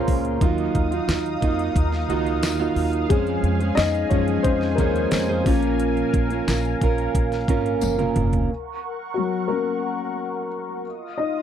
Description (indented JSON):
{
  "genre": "piano-driven pop",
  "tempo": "89 BPM",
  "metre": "4/4",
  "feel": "straight",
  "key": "unclear",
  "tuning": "A4 = 440 Hz",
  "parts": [
    { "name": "dark upright piano", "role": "accompaniment", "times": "0.0-11.4 s", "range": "Bb2 to F5", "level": "-26 LUFS", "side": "left 7 dB", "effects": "none" },
    { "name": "lush unison pad", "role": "sustained chords", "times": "0.0-11.4 s", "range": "Db4 to Eb6", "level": "-30 LUFS", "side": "equal", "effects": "chorus, phaser" },
    { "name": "fingerpicked plugged-in steel-string acoustic guitar", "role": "riff", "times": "0.0-8.5 s", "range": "F2 to C5", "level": "-24 LUFS", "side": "right 6 dB", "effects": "none" },
    { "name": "upright bass", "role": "bass", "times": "0.0-8.4 s", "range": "F1 to Gb2", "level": "-26 LUFS", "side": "equal", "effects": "none" },
    { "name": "pop drum kit", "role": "drums", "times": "0.1-8.5 s", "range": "hi-hat, kick drum, snare drum, toms", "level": "-23 LUFS", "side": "equal", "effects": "none" },
    { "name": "tambourine", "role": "percussion", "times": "1.1-8.0 s", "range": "none", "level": "-39 LUFS", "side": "left 10 dB", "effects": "none" }
  ],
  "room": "little or no reverb",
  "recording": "dry, close 1970s-style studio recording",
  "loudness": "-20 LUFS",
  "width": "side -9 dB against mid",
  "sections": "0.0-8.5 A section; 8.5-11.4 B section",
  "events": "upright piano solo 0.0-8.5, 8.5-11.4; drum fill 7.8-8.5",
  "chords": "0.4 Ebmadd9; 3.1 Dbmaj7/F; 5.5 Bbm; 8.5 Gb; 10.9 Dbadd9 (rootless)",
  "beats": "| 0.41 1.08 1.76 2.43 | 3.10 3.78 4.45 5.13 | 5.80 6.47 7.15 7.82 | 8.49 9.17 9.84 10.52 | 11.19"
}